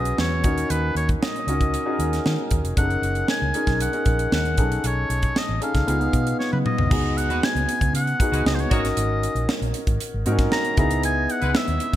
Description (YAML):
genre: polished 1980s jazz-funk pop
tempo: 116 BPM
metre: 4/4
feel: straight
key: unclear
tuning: A4 = 440 Hz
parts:
  - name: clear oboe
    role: melody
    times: 0.0-12.0 s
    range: B4 to A#5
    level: -26 LUFS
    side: left 1 dB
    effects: none
  - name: warm concert grand piano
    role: accompaniment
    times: 0.0-12.0 s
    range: B3 to B4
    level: -26 LUFS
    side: left 1 dB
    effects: wide subtle chorus
  - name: vintage muted fingered electric bass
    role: bass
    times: 0.0-12.0 s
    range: E#1 to D#3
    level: -25 LUFS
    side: equal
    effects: none
  - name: crisp fusion drum kit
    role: drums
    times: 0.1-12.0 s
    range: crash cymbal, hi-hat, kick drum, snare drum, toms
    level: -24 LUFS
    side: equal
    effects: gated reverb
  - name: warm horn section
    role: second line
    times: 7.3-11.5 s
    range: G#3 to C#5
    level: -32 LUFS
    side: equal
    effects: none
room: light reverb, studio ambience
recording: bright 1980s-style digital production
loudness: -20 LUFS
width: side -13 dB against mid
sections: 0.0-6.9 A section; 6.9-12.0 B section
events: drum fill 6.4-6.9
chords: 0.4 Bmaj9 (rootless); 2.8 F#6; 4.6 B13; 5.9 C#9; 6.9 C#9sus4; 8.7 G#9sus4; 10.8 C#m9